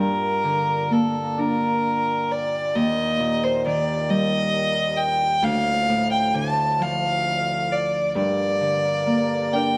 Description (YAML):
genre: celtic folk, Celtic slow air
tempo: 44 BPM (dotted quarters)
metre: 6/8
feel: rubato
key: G minor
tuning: A4 = 441 Hz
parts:
  - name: dark fiddle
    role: melody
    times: 0.0-9.8 s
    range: A4 to A5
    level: -24 LUFS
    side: equal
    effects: none
  - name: Celtic harp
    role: accompaniment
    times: 0.0-9.8 s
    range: D2 to Bb4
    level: -27 LUFS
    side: equal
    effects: none
  - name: clear woodwind section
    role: sustained chords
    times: 0.0-9.8 s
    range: D2 to Bb3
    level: -34 LUFS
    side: equal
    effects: none
room: moderate scoring stage reverb, RT60 1.6 s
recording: none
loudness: -22 LUFS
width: mono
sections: 0.0-9.8 A section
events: none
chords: 0.0 Gm; 2.8 Eb; 5.4 Dm; 8.1 Gm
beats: 1.38 | 2.75 4.08 | 5.42 6.79 | 8.13 9.51